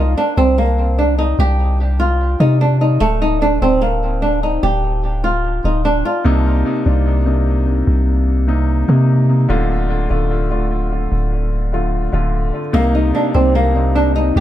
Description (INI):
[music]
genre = hip hop, trap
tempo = 148 BPM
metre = 4/4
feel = half-time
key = unclear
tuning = A4 = 440 Hz
[part]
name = flamenco guitar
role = melody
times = 0.0-6.2, 12.7-14.4 s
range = A3 to G4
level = -17 LUFS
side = equal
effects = tape echo
[part]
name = long sustained 808-style bass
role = bass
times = 0.0-14.4 s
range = D1 to C3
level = -16 LUFS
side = equal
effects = none
[part]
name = dark baby grand piano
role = accompaniment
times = 6.2-14.4 s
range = C3 to F4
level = -19 LUFS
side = left 1 dB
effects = tape echo
[sound]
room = light reverb, small room ambience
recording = echo-heavy mix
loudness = -13 LUFS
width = side -12 dB against mid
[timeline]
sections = 0.0-14.4 A section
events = none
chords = 0.0 C5; 3.0 N.C.; 6.3 Cm7; 9.5 Dm; 12.7 Cm7